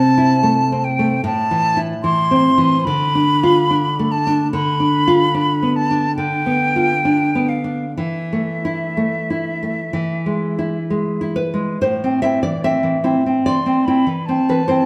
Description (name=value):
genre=romantic duo for flute and classical guitar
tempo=60-77 BPM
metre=4/4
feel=rubato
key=A minor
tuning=A4 = 440 Hz
part: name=bright silver concert flute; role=melody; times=0.0-14.9 s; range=E5 to C6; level=-22 LUFS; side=equal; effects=none
part: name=nylon-string guitar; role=accompaniment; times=0.0-14.9 s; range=A2 to E5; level=-19 LUFS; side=equal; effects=none
room=wet stone room reverb, RT60 1.4 s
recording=band playing live in one room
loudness=-18 LUFS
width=mono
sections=0.0-11.8 A section; 11.8-14.9 B section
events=none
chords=0.0 Am/C; 1.2 Am; 2.9 Dm; 4.5 Bdim/D; 8.0 Esus4; 9.9 E; 11.8 Am